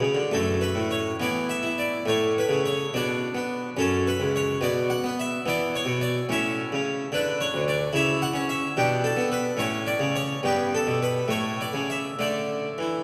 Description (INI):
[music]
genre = classical, baroque-style suite movement for harpsichord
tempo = 71 BPM (dotted quarters)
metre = 6/8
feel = rubato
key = unclear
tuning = A4 = 440 Hz
[part]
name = harpsichord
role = solo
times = 0.0-13.0 s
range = C#2 to F#5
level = -25 LUFS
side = equal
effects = none
[sound]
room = wet church reverb, RT60 3.5 s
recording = none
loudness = -25 LUFS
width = mono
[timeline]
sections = 0.3-13.0 A section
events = none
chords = 0.3 F#madd11; 1.2 E5; 2.1 A; 2.9 Bm; 3.8 F#5; 4.6 N.C.; 5.4 E5; 6.3 A; 7.1 N.C.; 7.9 C#madd11; 8.8 Bm7; 9.6 Aadd11; 10.4 G; 11.3 A; 12.2 D5